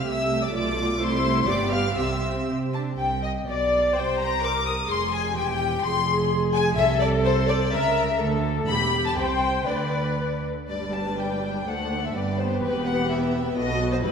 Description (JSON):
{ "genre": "quick classical-period movement for string orchestra", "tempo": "126 BPM", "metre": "2/4", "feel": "rubato", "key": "G major from 6.8 s", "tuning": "A4 = 440 Hz", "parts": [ { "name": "warm chamber violin section", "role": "melody", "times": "0.0-14.1 s", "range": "B4 to F6", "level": "-28 LUFS", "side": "left 5 dB", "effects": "none" }, { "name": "warm chamber violin section", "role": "second line", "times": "0.0-14.1 s", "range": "G4 to Eb6", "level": "-29 LUFS", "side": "left 2 dB", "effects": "none" }, { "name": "dark chamber viola section", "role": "accompaniment", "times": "0.0-14.1 s", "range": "G3 to D5", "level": "-27 LUFS", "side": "equal", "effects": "none" }, { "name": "warm chamber cello section", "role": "bass", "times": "0.0-14.1 s", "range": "D2 to D4", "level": "-30 LUFS", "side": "right 3 dB", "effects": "none" }, { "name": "warm chamber double bass section", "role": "bass", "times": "0.0-14.1 s", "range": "E1 to C3", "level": "-30 LUFS", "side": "right 3 dB", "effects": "none" } ], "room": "wet scoring stage reverb, RT60 1.6 s", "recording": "none", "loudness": "-22 LUFS", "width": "side -6 dB against mid", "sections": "0.0-3.0 A section; 3.0-10.7 B section; 10.7-14.1 C section", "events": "none", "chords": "0.1 C69; 0.5 Bm7b5; 1.0 C; 1.5 G7; 2.0 C; 3.0 Cm; 3.5 Bm; 3.9 Cm9; 4.9 Fm; 5.4 Em; 5.8 Fm; 6.8 Am/C; 7.7 C#m6; 8.2 D5; 8.7 Em; 9.2 C5; 9.7 Bm/D; 10.7 G; 11.7 D7; 12.1 G; 12.6 Em; 13.6 B7", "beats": "| 0.07 0.53 | 1.00 1.47 | 1.97 2.48 | 2.98 3.46 | 3.94 4.42 | 4.89 5.36 | 5.83 6.30 | 6.78 7.25 | 7.72 8.20 | 8.68 9.16 | 9.67 10.18 | 10.69 11.18 | 11.67 12.14 | 12.62 13.10 | 13.57 14.04" }